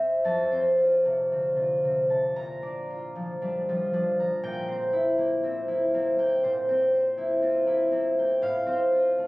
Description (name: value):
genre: classical, solo harp piece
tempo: 54-62 BPM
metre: 4/4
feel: rubato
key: F major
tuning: A4 = 439 Hz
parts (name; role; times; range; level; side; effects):
- concert harp; solo; 0.0-9.3 s; F2 to E6; -23 LUFS; equal; none
room: wet stone room reverb, RT60 1.3 s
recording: recorded on a phone in the room, studio reverb, compression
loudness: -23 LUFS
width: side -21 dB against mid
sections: 0.2-9.3 A section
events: none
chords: 0.2 F; 2.3 Bb; 4.4 C7/Bb; 8.4 F/A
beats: | 0.21 1.28 2.33 3.38 | 4.41 5.42 6.43 7.41 | 8.41